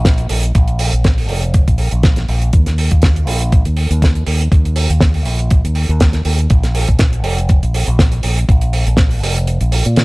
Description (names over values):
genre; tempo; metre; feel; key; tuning
nu-disco, nu disco; 121 BPM; 4/4; swing 54% on 16ths; unclear; A4 = 439 Hz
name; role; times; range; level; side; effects
fingered electric bass with an envelope filter; bass; 0.0-10.0 s; F1 to Bb2; -15 LUFS; equal; sidechain pumping
damped 70s drum kit; drums; 0.1-10.0 s; hi-hat, snare drum; -19 LUFS; right 1 dB; small room ambience
electronic kick drum; drums; 0.1-9.1 s; none; -12 LUFS; equal; small room ambience
room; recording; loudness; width
little or no reverb; dry, gritty hardware recording, cassette tape; -12 LUFS; side -24 dB against mid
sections
0.0-10.0 A section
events
kick drops out 9.5-10.0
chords
none